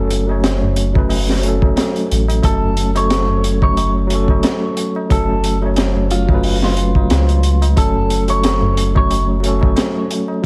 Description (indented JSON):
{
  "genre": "trip hop",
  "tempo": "90 BPM",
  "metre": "4/4",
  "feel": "swing 56% on 16ths",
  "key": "F# harmonic minor",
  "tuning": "A4 = 442 Hz",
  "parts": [
    { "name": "overdriven tine electric piano", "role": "accompaniment", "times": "0.0-10.5 s", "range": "F#3 to C#5", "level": "-22 LUFS", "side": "equal", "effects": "fast tremolo, harmonic tremolo" },
    { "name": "soft dub sub bass", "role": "bass", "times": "0.0-9.7 s", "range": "F#1 to C#2", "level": "-20 LUFS", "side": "equal", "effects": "none" },
    { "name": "crunchy breakbeat drum kit", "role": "drums", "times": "0.1-10.3 s", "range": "hi-hat, kick drum, snare drum", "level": "-20 LUFS", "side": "equal", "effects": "none" },
    { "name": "tabla", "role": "percussion", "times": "0.3-10.5 s", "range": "none", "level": "-30 LUFS", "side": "equal", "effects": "none" },
    { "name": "clean electric guitar", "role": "melody", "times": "2.4-9.3 s", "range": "E#4 to C#5", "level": "-24 LUFS", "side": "equal", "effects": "tape echo" }
  ],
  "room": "small room ambience",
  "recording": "vinyl crackle",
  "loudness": "-16 LUFS",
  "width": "mono",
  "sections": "0.0-10.5 A section",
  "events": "none",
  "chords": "0.0 F#m"
}